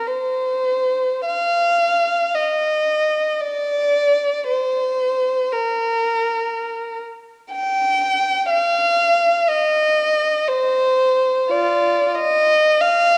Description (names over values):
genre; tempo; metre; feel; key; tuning
classical, free, expressive piece for unaccompanied violin; free time; none; none; C minor; A4 = 435 Hz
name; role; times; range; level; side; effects
warm violin; solo; 0.0-13.2 s; F4 to G5; -19 LUFS; equal; none
room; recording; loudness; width
moderate concert hall reverb, RT60 1.9 s; dark, warm production; -19 LUFS; mono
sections
0.0-13.2 A section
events
none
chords
none